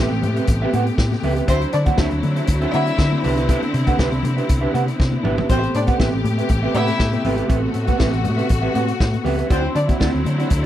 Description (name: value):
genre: disco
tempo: 120 BPM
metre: 4/4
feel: straight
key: A dorian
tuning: A4 = 440 Hz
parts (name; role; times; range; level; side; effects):
- mellow electric guitar; accompaniment; 0.0-10.7 s; C4 to F#5; -23 LUFS; right 4 dB; none
- clear studio string section; sustained chords; 0.0-10.7 s; C3 to G4; -24 LUFS; left 2 dB; none
- hollow-body short-scale picked electric bass; bass; 0.0-10.7 s; G#1 to D3; -22 LUFS; equal; none
- vintage drum kit; drums; 0.2-10.6 s; hi-hat, kick drum, snare drum, toms; -19 LUFS; equal; none
- congas; percussion; 0.2-10.4 s; none; -30 LUFS; left 9 dB; none
- warm chamber violin section; second line; 1.5-9.9 s; C4 to E5; -23 LUFS; left 3 dB; none
room: little or no reverb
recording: dry, close 1970s-style studio recording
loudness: -16 LUFS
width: side -12 dB against mid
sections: 0.0-10.7 A section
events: drum fill 5.0-5.5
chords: 0.0 Am9; 1.5 D9; 3.2 Cmaj9; 5.5 Am9; 9.5 D9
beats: 0.48 0.98 | 1.49 1.99 2.49 2.99 | 3.49 3.99 4.49 4.99 | 5.49 6.00 6.50 7.00 | 7.50 8.00 8.50 9.00 | 9.51 10.01 10.51